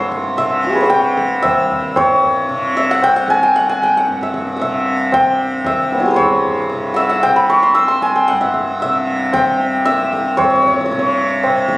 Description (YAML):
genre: indian classical, Hindustani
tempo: 114 BPM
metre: 4/4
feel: straight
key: C raga puriya dhanashri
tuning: A4 = 441 Hz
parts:
  - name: santur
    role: melody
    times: 0.0-11.8 s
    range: B3 to E6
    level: -14 LUFS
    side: equal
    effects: slapback echo
  - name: tanpura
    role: drone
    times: 0.0-11.8 s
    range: C2 to C3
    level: -20 LUFS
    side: equal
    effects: none
  - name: tabla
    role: percussion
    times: 0.1-11.8 s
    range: none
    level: -21 LUFS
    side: equal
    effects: none
room: wet recital hall reverb, RT60 1.3 s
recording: recorded on a phone in the room, studio reverb, compression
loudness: -12 LUFS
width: side -19 dB against mid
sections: 0.0-11.8 A section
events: none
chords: none